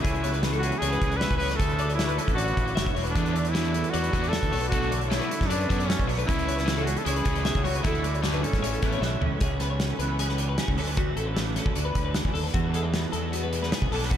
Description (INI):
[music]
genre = math rock and midwest emo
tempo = 154 BPM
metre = 4/4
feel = straight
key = unclear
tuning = A4 = 438 Hz
[part]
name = clear trumpet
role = melody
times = 0.0-9.2 s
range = C#4 to B4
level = -30 LUFS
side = equal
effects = analog delay
[part]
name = twelve-string electric guitar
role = accompaniment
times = 0.0-14.2 s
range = D2 to E4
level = -34 LUFS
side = right 8 dB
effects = ensemble chorus
[part]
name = twelve-string electric guitar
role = arpeggios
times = 0.0-14.2 s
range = F#4 to E5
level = -32 LUFS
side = left 4 dB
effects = wide subtle chorus
[part]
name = fuzz fingered electric bass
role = bass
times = 0.0-14.2 s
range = E1 to F#2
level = -28 LUFS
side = equal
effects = overdrive
[part]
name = loose indie drum kit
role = drums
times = 0.0-14.2 s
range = hi-hat, kick drum, snare drum, toms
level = -29 LUFS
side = equal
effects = none
[part]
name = overdriven electric guitar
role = riff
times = 3.2-9.3 s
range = D3 to G#4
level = -35 LUFS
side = left 1 dB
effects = none
[sound]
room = moderate huge ambient reverb, RT60 8.5 s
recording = dreamy mix soaked in reverb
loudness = -23 LUFS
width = side -10 dB against mid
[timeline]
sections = 0.0-9.4 A section; 9.4-14.2 B section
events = drum fill 9.0-9.4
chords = 0.0 C#m7; 1.6 Dmaj9; 3.2 E9sus4; 4.5 Bm9; 6.3 C#m7; 7.8 Dmaj9#11; 8.6 Aadd9; 9.4 C#m7; 10.8 Bm9; 12.5 E9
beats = | 0.04 0.43 0.82 1.21 | 1.60 1.99 2.38 2.77 | 3.16 3.54 3.94 4.33 | 4.71 5.11 5.50 5.88 | 6.28 6.67 7.06 7.45 | 7.84 8.23 8.62 9.01 | 9.40 9.80 10.19 10.58 | 10.97 11.37 11.76 12.15 | 12.55 12.94 13.33 13.72 | 14.12